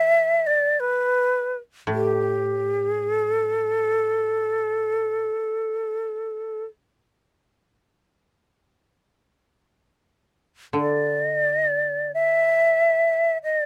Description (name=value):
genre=japanese traditional, Japanese chamber music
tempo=free time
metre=none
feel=none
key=unclear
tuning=A4 = 439 Hz
part: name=breathy bright shakuhachi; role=melody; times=0.0-13.7 s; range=A4 to E5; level=-23 LUFS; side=equal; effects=none
part: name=koto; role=accompaniment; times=0.0-13.7 s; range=A2 to E3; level=-30 LUFS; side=equal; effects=none
room=little or no reverb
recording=close, detailed microphones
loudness=-23 LUFS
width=mono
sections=0.0-13.7 A section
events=none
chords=none